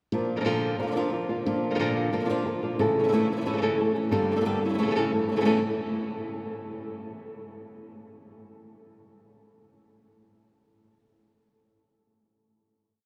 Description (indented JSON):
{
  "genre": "flamenco",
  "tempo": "180 BPM",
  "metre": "4/4",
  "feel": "straight",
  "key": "A phrygian dominant",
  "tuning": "A4 = 441 Hz",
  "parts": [
    { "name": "flamenco guitar", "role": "accompaniment", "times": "0.1-5.6 s", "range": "G2 to Bb4", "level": "-29 LUFS", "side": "equal", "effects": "none" },
    { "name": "flamenco guitar", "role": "stabs", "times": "0.1-5.6 s", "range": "G2 to A4", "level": "-31 LUFS", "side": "equal", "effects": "none" }
  ],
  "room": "wet cathedral reverb, RT60 6.7 s",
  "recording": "recorded in a church or concert hall",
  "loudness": "-27 LUFS",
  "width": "mono",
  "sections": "0.1-5.5 groove; 5.5-6.8 final chord",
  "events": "none",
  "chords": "0.1 Bb; 2.8 A; 4.1 Gmadd9; 4.8 A"
}